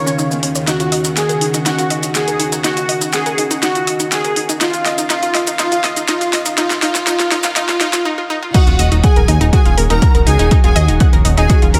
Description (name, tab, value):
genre	melodic techno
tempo	122 BPM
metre	4/4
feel	straight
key	Eb minor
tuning	A4 = 439 Hz
part	soft supersaw	melody	0.0-11.8 s	F4 to Db5	-22 LUFS	equal	sidechain pumping, delay
part	lush unison pad	sustained chords	0.0-11.8 s	Eb2 to Gb4	-26 LUFS	equal	chorus, sidechain pumping
part	bowed-like drone	drone	0.0-11.8 s	Eb3	-33 LUFS	equal	none
part	analog pluck	arpeggios	0.1-11.8 s	Cb4 to Gb6	-24 LUFS	equal	chorus, sidechain pumping, digital delay
part	maracas	percussion	0.1-8.0 s	none	-26 LUFS	equal	none
part	deep house drum kit	drums	0.4-11.8 s	crash cymbal, hi-hat, snare drum	-23 LUFS	equal	high-pass filter on hats, high-pass filter on snare, high-pass filter on cymbals
part	clear studio violin section	second line	8.5-11.8 s	Gb5 to Bb5	-27 LUFS	equal	sidechain pumping, digital delay
part	electronic kick drum	drums	8.5-11.6 s	none	-14 LUFS	equal	overdrive
part	fat analog bass	bass	8.7-11.8 s	Eb1 to Eb2	-16 LUFS	equal	sidechain pumping
room	light reverb, digital ambience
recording	high-pass filter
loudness	-15 LUFS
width	mono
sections	0.0-8.5 A section; 8.5-11.8 B section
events	build-up 0.0-8.5; filter sweep on synth arpeggio sound 0.0-8.5; drum fill 0.7-8.1; break 8.1-8.5; drop 8.5-11.8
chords	0.0 Dbadd9/Eb; 0.7 Ebm7; 4.6 Dbadd9/Eb; 8.5 Ebm7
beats	0.18 | 0.68 1.17 1.66 2.15 | 2.64 3.13 3.63 4.12 | 4.61 5.10 5.59 6.09 | 6.58 7.07 7.56 8.05 | 8.54 9.04 9.53 10.02 | 10.51 11.00 11.50